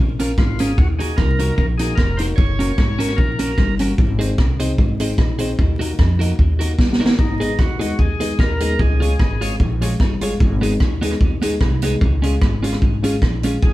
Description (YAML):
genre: ska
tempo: 150 BPM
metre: 4/4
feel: swing 54% on 8ths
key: Eb dorian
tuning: A4 = 440 Hz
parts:
  - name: upright bass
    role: bass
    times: 0.0-13.7 s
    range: F1 to F2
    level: -20 LUFS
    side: equal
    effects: none
  - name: clean electric guitar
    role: accompaniment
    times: 0.2-13.6 s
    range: Cb4 to Eb5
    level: -26 LUFS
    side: right 2 dB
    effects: dub echo
  - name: warm upright piano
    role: stabs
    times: 0.2-13.6 s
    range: Ab3 to C5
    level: -26 LUFS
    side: left 2 dB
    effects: none
  - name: swinging big-band drum kit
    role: drums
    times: 0.2-13.7 s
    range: hi-hat, kick drum, rim click, snare drum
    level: -18 LUFS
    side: equal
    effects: none
  - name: overdriven tonewheel organ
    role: melody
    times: 0.4-3.7, 7.2-9.6, 13.6-13.7 s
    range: Eb4 to Db5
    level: -26 LUFS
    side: equal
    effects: slow rotary speaker
room: moderate studio reverb, RT60 0.8 s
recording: band playing live in one room, vinyl crackle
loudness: -15 LUFS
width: side -17 dB against mid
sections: 0.0-7.2 A section; 7.2-13.7 B section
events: drum fill 6.8-7.2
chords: 0.0 Bbm; 0.8 Ebm; 2.4 Gb; 4.0 Ab; 5.6 Ebm; 7.2 Abm; 8.8 Db; 10.4 Abm; 12.0 Db